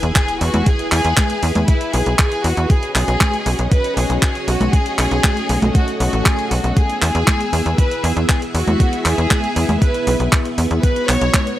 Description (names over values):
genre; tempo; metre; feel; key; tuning
italo disco; 118 BPM; 4/4; straight; E major; A4 = 439 Hz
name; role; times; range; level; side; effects
warm studio violin section; melody; 0.0-11.6 s; E4 to C#5; -22 LUFS; equal; analog delay
string machine, full ensemble; sustained chords; 0.0-11.6 s; A3 to G#5; -24 LUFS; equal; ensemble chorus
tight sequencer bass; bass; 0.0-11.3 s; A1 to E2; -18 LUFS; equal; none
clean 12-bit digital drum machine; drums; 0.0-11.6 s; congas, handclaps, hi-hat; -20 LUFS; equal; overdrive
impact; sound effects; 0.0-0.7 s; none; -40 LUFS; equal; none
electronic kick drum; drums; 0.2-11.4 s; none; -15 LUFS; equal; overdrive
room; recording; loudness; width
digital ambience; dry, gritty hardware recording, transformer saturation; -14 LUFS; side -14 dB against mid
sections
0.0-11.6 A section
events
impact 0.0-0.7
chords
0.0 E; 2.7 Badd9; 6.8 E; 10.8 Badd9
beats
0.16 | 0.67 1.17 1.68 2.19 | 2.70 3.21 3.72 4.22 | 4.73 5.24 5.75 6.26 | 6.77 7.28 7.78 8.29 | 8.80 9.31 9.82 10.33 | 10.84 11.34